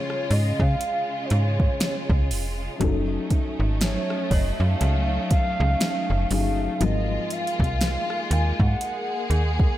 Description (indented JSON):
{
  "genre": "contemporary R&B",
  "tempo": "60 BPM",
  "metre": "4/4",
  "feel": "swing 58% on 16ths",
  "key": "Db major",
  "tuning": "A4 = 438 Hz",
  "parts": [
    { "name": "hollow clarinet-like synth lead", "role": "melody", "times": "0.0-9.8 s", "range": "C5 to Ab5", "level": "-29 LUFS", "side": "equal", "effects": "chorus, tape echo" },
    { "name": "felt-muted upright piano", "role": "accompaniment", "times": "0.0-9.8 s", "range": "Ab2 to Db5", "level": "-31 LUFS", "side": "left 5 dB", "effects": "none" },
    { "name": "warm studio string section", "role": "sustained chords", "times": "0.0-9.8 s", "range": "Db3 to Ab4", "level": "-30 LUFS", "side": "equal", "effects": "none" },
    { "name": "smooth R&B drum kit", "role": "drums", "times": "0.1-9.8 s", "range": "hi-hat, kick drum, rim click, snare drum", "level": "-24 LUFS", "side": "equal", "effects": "none" },
    { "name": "slap-like FM bass", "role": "bass", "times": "0.3-9.7 s", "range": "F1 to Db3", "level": "-23 LUFS", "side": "equal", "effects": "none" },
    { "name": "synth chime", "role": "texture", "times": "4.3-9.8 s", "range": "Ab4 to Db5", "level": "-37 LUFS", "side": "right 1 dB", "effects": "ensemble chorus, phaser, tape echo" }
  ],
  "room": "light reverb, digital ambience",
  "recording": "none",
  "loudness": "-21 LUFS",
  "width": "side -14 dB against mid",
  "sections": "0.0-9.8 A section",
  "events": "none",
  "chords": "0.0 Db; 2.8 Gbm6; 6.8 Ab13"
}